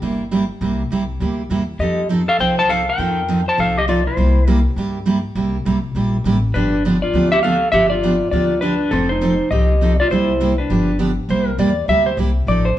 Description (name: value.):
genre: country, western swing.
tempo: 202 BPM.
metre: 4/4.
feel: swing 62% on 8ths.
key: C mixolydian.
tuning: A4 = 440 Hz.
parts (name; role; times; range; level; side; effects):
picked steel-string acoustic guitar; accompaniment; 0.0-12.7 s; C3 to A4; -20 LUFS; right 2 dB; none.
upright bass; bass; 0.0-12.8 s; F1 to G2; -21 LUFS; left 1 dB; none.
clean lap steel guitar; melody; 1.8-12.8 s; C4 to A5; -18 LUFS; left 1 dB; none.
room: moderate large studio reverb, RT60 1.1 s.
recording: band playing live in one room, nothing above 10.8 kHz.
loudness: -15 LUFS.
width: side -13 dB against mid.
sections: 0.0-11.3 A section; 11.3-12.8 B section.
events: electric slide guitar solo 11.3-12.8.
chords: 0.0 C9; 1.8 F9; 4.2 C7; 6.5 G7; 8.9 F9; 10.1 C7; 10.7 G7; 11.3 C9.